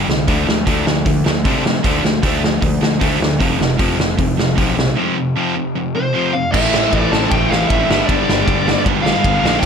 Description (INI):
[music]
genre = punk rock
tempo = 154 BPM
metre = 4/4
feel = straight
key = unclear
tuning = A4 = 441 Hz
[part]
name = distorted electric guitar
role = riff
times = 0.0-9.7 s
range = F2 to E4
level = -20 LUFS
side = right 11 dB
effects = overdrive
[part]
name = sludgy distorted guitar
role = riff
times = 0.0-9.7 s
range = F2 to D4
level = -20 LUFS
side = left 11 dB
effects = overdrive
[part]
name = fuzz picked electric bass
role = bass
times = 0.0-9.7 s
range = F1 to C3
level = -21 LUFS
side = equal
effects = overdrive
[part]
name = loose indie drum kit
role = drums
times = 0.1-9.7 s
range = crash cymbal, hi-hat, kick drum, ride cymbal, snare drum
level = -18 LUFS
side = right 1 dB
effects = none
[part]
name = bluesy overdriven lead guitar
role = melody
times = 6.0-9.7 s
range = C5 to A5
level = -19 LUFS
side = left 1 dB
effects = distortion
[part]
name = fuzz guitar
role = riff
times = 6.5-9.7 s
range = G2 to E4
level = -23 LUFS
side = right 1 dB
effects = distortion
[sound]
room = light reverb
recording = none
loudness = -14 LUFS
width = side -6 dB against mid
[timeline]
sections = 0.0-6.5 A section; 6.5-9.7 B section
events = break 5.0-6.5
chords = 0.3 Dm; 3.4 F5; 6.5 Am; 7.9 G